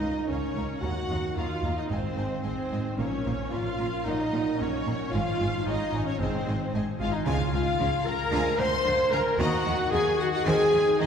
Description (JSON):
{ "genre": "cinematic, heroic adventure film score", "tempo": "112 BPM", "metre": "4/4", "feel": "straight", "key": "Db major", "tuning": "A4 = 440 Hz", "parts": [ { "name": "warm symphonic violin section", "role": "melody", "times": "0.0-11.1 s", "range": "C5 to C6", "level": "-34 LUFS", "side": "left 2 dB", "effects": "none" }, { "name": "warm clarinet", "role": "second line", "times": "0.0-11.1 s", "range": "C4 to C5", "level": "-36 LUFS", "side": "left 2 dB", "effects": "none" }, { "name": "warm symphonic violin section", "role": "second line", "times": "0.0-11.1 s", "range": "Ab4 to Bb5", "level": "-40 LUFS", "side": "left 2 dB", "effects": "none" }, { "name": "warm symphonic viola section", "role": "accompaniment", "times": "0.0-11.1 s", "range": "C4 to C5", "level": "-32 LUFS", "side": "equal", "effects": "none" }, { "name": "mellow French horn section", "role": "sustained chords", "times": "0.0-11.1 s", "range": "C4 to C5", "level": "-29 LUFS", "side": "equal", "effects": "none" }, { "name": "concert harp", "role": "arpeggios", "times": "0.0-11.1 s", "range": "Ab2 to Db6", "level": "-37 LUFS", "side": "left 4 dB", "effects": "none" }, { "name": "rich symphonic cello section", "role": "bass", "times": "0.0-11.1 s", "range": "Db2 to Eb3", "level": "-33 LUFS", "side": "right 2 dB", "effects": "none" }, { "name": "rich symphonic double bass section", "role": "bass", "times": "0.0-11.1 s", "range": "Ab1 to Eb2", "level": "-33 LUFS", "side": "right 2 dB", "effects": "none" }, { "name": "warm trombone section", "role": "sustained chords", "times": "0.8-10.7 s", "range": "Eb3 to Db4", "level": "-41 LUFS", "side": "right 2 dB", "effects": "none" }, { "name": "timpani", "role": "percussion", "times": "6.2-8.0 s", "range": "Ab2 to Db3", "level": "-35 LUFS", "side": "right 4 dB", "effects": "none" } ], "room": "wet concert hall reverb, RT60 2.5 s", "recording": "heard from further back in the room", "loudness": "-24 LUFS", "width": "side -7 dB against mid", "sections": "0.0-11.1 A section", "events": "none", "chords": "0.0 Bbm/Db; 0.8 Ebm; 1.9 Ab; 3.0 Bbm; 4.1 Ebm/Bb; 5.1 Db/Ab; 6.2 Ab; 7.3 Db; 8.3 Bb7/D; 9.4 Ebm; 10.5 Ab/Eb" }